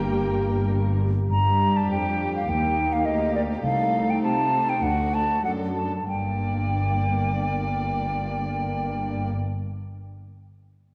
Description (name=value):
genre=quick classical-period movement for symphony orchestra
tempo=92-105 BPM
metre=4/4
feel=rubato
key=G minor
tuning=A4 = 443 Hz
part: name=muted chamber violin section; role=melody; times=0.0-9.3 s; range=F4 to G5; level=-41 LUFS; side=equal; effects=none
part: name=muted chamber violin section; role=second line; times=0.0-9.3 s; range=D4 to Bb4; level=-36 LUFS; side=equal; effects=none
part: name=muted chamber viola section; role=accompaniment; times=0.0-9.3 s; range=F#3 to G4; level=-32 LUFS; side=equal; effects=none
part: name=muted chamber cello section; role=bass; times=0.0-9.3 s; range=C2 to C3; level=-31 LUFS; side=equal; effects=none
part: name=muted chamber double bass section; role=bass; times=0.0-9.3 s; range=G1 to Eb2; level=-31 LUFS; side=equal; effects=none
part: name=hollow concert flute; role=second line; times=1.3-9.3 s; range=D5 to Bb5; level=-28 LUFS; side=equal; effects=none
room=wet concert hall reverb, RT60 2.2 s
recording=dark, warm production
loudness=-24 LUFS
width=mono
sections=0.0-1.3 A section; 1.3-6.1 B section; 6.1-8.5 C section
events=slowing down 0.1-6.1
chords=0.0 Gm; 1.3 G5; 2.5 Eb; 3.6 Adim/C; 4.8 D; 6.1 Gm